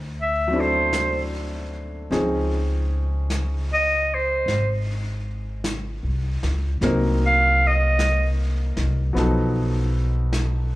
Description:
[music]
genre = jazz ballad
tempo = 51 BPM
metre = 4/4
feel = swing 67% on 8ths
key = unclear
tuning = A4 = 441 Hz
[part]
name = warm baby grand piano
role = accompaniment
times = 0.0-10.8 s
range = F3 to C5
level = -26 LUFS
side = left 1 dB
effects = slapback echo
[part]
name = upright bass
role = bass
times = 0.0-10.8 s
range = Ab1 to D2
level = -23 LUFS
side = equal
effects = none
[part]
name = breathy clarinet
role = melody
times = 0.2-8.3 s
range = C5 to F5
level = -21 LUFS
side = right 1 dB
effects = slapback echo
[part]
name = vintage brush drum kit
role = drums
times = 0.9-10.8 s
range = brushed snare drum, hi-hat, snare drum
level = -34 LUFS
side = equal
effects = none
[sound]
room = small room ambience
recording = live gig heard through the venue's PA, club reverb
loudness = -20 LUFS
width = side -18 dB against mid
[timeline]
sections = 0.0-10.8 A section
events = clarinet solo 0.0-10.8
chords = 0.0 D9; 2.1 Dbmaj9; 6.8 Cm7b5; 9.2 B7#11

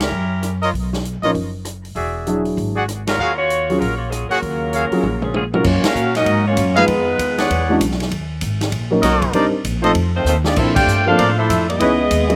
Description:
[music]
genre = jazz, big band swing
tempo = 196 BPM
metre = 4/4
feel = swing 62% on 8ths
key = Eb minor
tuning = A4 = 440 Hz
[part]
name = bright saxophone section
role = melody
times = 0.0-0.6, 3.1-8.0, 10.2-12.4 s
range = Gb3 to G5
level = -23 LUFS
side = equal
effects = none
[part]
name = upright bass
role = bass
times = 0.0-12.4 s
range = E1 to A#2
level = -24 LUFS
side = equal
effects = none
[part]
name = swinging big-band drum kit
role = drums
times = 0.0-12.3 s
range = crash cymbal, hi-hat, kick drum, ride cymbal, rim click, snare drum, toms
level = -27 LUFS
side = equal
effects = none
[part]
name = warm trumpet section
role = stabs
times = 0.6-11.9 s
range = Eb4 to F#5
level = -21 LUFS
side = equal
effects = none
[part]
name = dark upright piano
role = accompaniment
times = 1.2-12.4 s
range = E3 to A#4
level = -21 LUFS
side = equal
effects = none
[part]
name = warm trombone section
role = second line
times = 4.3-8.0, 10.2-12.4 s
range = Bb2 to G4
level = -25 LUFS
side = equal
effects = slapback echo
[sound]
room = little or no reverb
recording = recorded outdoors, with no room sound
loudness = -18 LUFS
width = mono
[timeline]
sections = 0.0-5.6 A section; 5.6-12.4 B section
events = band accent 3.0, 5.8, 10.7; drum fill 5.0-5.6, 10.3-10.6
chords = 0.1 Gb7b9; 0.7 Bmaj9#11; 2.0 E9; 3.2 Ebm11; 5.6 F#maj7; 6.9 Fm7b5; 7.5 E13; 8.1 D#m7; 9.3 Cm9; 9.9 F7; 10.6 A#maj9; 11.8 C#m9

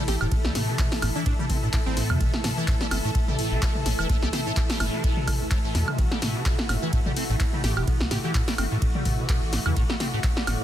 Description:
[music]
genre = acid house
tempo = 127 BPM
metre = 4/4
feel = swing 55% on 16ths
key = A dorian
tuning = A4 = 437 Hz
[part]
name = muted studio string section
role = sustained chords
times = 0.0-10.6 s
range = E3 to A4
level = -35 LUFS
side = left 2 dB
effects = sidechain pumping
[part]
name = liquid acid bass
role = riff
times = 0.0-10.6 s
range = A1 to C4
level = -30 LUFS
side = equal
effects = phaser, ensemble chorus, sidechain pumping, digital delay
[part]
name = granular cloud pad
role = texture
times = 0.0-10.6 s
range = E4 to D6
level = -34 LUFS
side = right 2 dB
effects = built-in reverb, sidechain pumping
[part]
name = plucky unison lead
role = melody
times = 0.1-2.2, 7.6-8.3 s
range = C4 to G4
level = -36 LUFS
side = right 3 dB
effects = phaser, ping-pong delay
[part]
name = warm sub bass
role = bass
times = 0.1-10.6 s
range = E1 to E2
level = -27 LUFS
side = equal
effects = sidechain pumping
[part]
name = punchy analog drum machine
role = drums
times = 0.1-10.6 s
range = handclaps, hi-hat, ride cymbal, snare drum, toms, woodblock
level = -28 LUFS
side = equal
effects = overdrive
[part]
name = electronic kick drum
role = drums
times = 0.3-10.3 s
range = none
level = -25 LUFS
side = equal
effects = none
[sound]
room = light reverb, digital ambience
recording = dense, heavily limited modern master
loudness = -22 LUFS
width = side -11 dB against mid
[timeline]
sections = 0.0-10.6 A section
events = none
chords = 0.0 A5

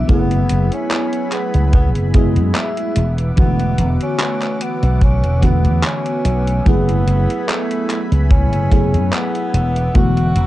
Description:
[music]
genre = vaporwave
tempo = 73 BPM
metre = 4/4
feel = swing 54% on 16ths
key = F# minor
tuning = A4 = 440 Hz
[part]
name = mellow tenor saxophone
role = melody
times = 0.0-10.5 s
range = G#3 to F#4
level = -24 LUFS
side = left 1 dB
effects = tape echo
[part]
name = FM electric piano with soft pad layer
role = accompaniment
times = 0.0-10.5 s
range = D3 to G#4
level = -21 LUFS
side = equal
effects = wide subtle chorus
[part]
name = lush unison pad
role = sustained chords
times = 0.0-10.5 s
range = B3 to D6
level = -31 LUFS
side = right 2 dB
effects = chorus
[part]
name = slap bass with an envelope filter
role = bass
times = 0.0-10.5 s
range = E1 to F#2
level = -16 LUFS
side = equal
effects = tube saturation
[part]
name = detuned 8-bit digital drum machine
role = drums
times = 0.1-10.5 s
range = handclaps, hi-hat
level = -24 LUFS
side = equal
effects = overdrive, vintage 12-bit sampler grit
[part]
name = kick drum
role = drums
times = 0.1-10.1 s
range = none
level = -16 LUFS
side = equal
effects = vintage 12-bit sampler grit
[sound]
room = little or no reverb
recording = dark, warm production, cassette tape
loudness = -14 LUFS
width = side -15 dB against mid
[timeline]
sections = 0.0-10.5 A section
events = none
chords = 0.1 F#m11; 3.0 E9sus4; 6.7 F#m11; 9.5 E9sus4

